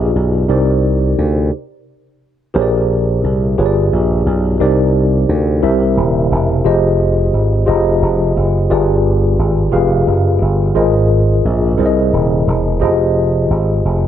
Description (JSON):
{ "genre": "slow gospel", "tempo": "58 BPM (dotted quarters)", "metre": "6/8", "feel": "straight", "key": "C minor", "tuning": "A4 = 439 Hz", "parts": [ { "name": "mellow tine electric piano", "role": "accompaniment", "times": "0.0-14.1 s", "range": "G2 to F5", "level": "-14 LUFS", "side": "left 1 dB", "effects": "medium stereo tremolo" }, { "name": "slap bass with an envelope filter", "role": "bass", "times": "0.0-14.1 s", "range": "Eb1 to D2", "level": "-15 LUFS", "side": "equal", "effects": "none" } ], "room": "light reverb, digital ambience", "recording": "none", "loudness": "-12 LUFS", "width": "side -10 dB against mid", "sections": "0.0-2.5 A section; 2.5-14.1 A section", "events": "stop 1.5-2.5", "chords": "0.5 Cm9; 2.5 Bb13; 3.6 G7b9; 4.6 Cm9; 5.6 C7; 6.7 Fm9; 8.7 G7b9; 10.8 Ab69; 11.8 C7alt; 12.8 Fm9", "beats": "| 0.49 1.52 | 2.55 3.57 | 4.60 5.63 | 6.65 7.68 | 8.71 9.73 | 10.76 11.79 | 12.82 13.85" }